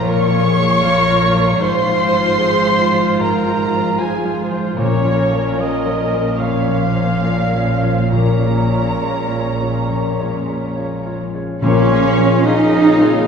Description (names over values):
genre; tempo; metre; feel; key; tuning
cinematic, emotional film score for orchestra; 65-77 BPM; 4/4; rubato; Bb minor; A4 = 439 Hz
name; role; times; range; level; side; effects
muted studio violin section; melody; 0.0-13.3 s; Db4 to F5; -27 LUFS; left 2 dB; none
mellow cor anglais; second line; 0.0-13.3 s; Db4 to Ab5; -21 LUFS; right 2 dB; none
muted studio violin section; second line; 0.0-13.3 s; Db5 to Db6; -23 LUFS; left 1 dB; none
bright concert grand piano; accompaniment; 0.0-13.3 s; F2 to Db5; -22 LUFS; left 1 dB; none
muted studio viola section; accompaniment; 0.0-13.3 s; Db3 to Db5; -26 LUFS; right 1 dB; none
concert harp; arpeggios; 0.0-13.3 s; Ab2 to F4; -25 LUFS; left 7 dB; none
muted studio cello section; bass; 0.0-13.3 s; Ab2 to Eb4; -20 LUFS; right 3 dB; none
muted studio double bass section; bass; 0.0-12.3 s; Ab1 to Bb1; -23 LUFS; equal; none
timpani; percussion; 4.8-12.8 s; Bb2; -20 LUFS; left 2 dB; none
bright clarinet; second line; 11.6-13.3 s; C4 to F4; -25 LUFS; equal; none
warm French horn section; sustained chords; 11.6-13.3 s; Db3 to F4; -26 LUFS; left 2 dB; none
room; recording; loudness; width
wet scoring stage reverb, RT60 1.5 s; heard from further back in the room; -14 LUFS; side -6 dB against mid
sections
0.0-11.6 A section; 11.6-13.3 B section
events
none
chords
0.0 Bbm; 1.6 Fm/Ab; 4.8 Bbm; 8.1 Bbm7; 11.6 Bbm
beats
0.04 0.83 | 1.61 2.40 3.20 3.99 | 4.79 5.60 6.40 7.23 | 8.14 9.02 9.89 10.76 | 11.62 12.45